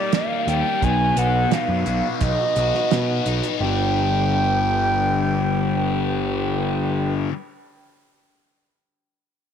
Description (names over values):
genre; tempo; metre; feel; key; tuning
psychedelic rock; 87 BPM; 4/4; straight; unclear; A4 = 436 Hz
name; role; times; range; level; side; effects
reedy concert flute; melody; 0.0-7.1 s; D5 to Ab5; -23 LUFS; right 2 dB; slapback echo
combo organ; sustained chords; 0.0-7.1 s; D4 to B4; -31 LUFS; right 12 dB; none
fuzz guitar; riff; 0.0-7.3 s; G2 to G4; -24 LUFS; left 12 dB; distortion, phaser
cloth-damped thuddy drum kit; drums; 0.1-3.6 s; hi-hat, kick drum, snare drum; -24 LUFS; right 6 dB; none
fuzz picked electric bass; bass; 0.5-7.3 s; G1 to B2; -23 LUFS; right 1 dB; overdrive
room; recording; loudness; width
moderate spring reverb, RT60 2.1 s; 1960s-style stereo with parts hard left and right; -18 LUFS; side -8 dB against mid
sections
0.0-3.6 A section; 3.6-6.4 B section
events
none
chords
0.0 Eb; 0.8 B; 3.6 G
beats
0.14 | 0.83 1.53 2.22 2.92 | 3.61 4.30 4.99 5.68